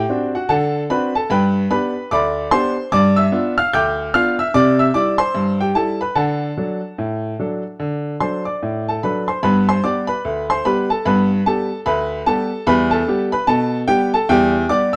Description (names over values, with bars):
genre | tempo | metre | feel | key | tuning
ragtime piano | 74 BPM | 2/4 | swing 60% on 16ths | G major | A4 = 440 Hz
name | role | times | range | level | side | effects
clear upright piano | solo | 0.0-15.0 s | D2 to G6 | -18 LUFS | equal | none
room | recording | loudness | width
moderate spring reverb, RT60 1.4 s | dark, warm production | -18 LUFS | mono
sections
0.0-9.4 A section; 9.4-15.0 B section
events
none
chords
0.0 D7; 1.3 G; 2.9 G7; 4.5 C; 6.2 D; 9.4 G; 12.7 Em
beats
0.49 | 1.30 2.11 | 2.91 3.72 | 4.53 5.35 | 6.16 6.98 | 7.79 8.61 | 9.42 10.24 | 11.05 11.86 | 12.67 13.47 | 14.28